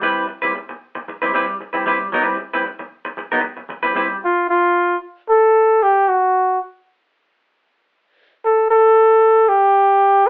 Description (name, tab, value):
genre	disco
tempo	114 BPM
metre	4/4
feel	straight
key	unclear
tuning	A4 = 440 Hz
part	clean electric guitar	accompaniment	0.0-4.2 s	G3 to B4	-18 LUFS	equal	none
part	warm flugelhorn	melody	4.2-10.3 s	F4 to A4	-11 LUFS	equal	none
room	moderate studio reverb, RT60 0.5 s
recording	band playing live in one room, telephone sound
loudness	-14 LUFS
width	side -28 dB against mid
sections	0.0-4.2 A section; 4.2-10.3 B section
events	none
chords	0.0 Cmaj7/G; 4.2 N.C.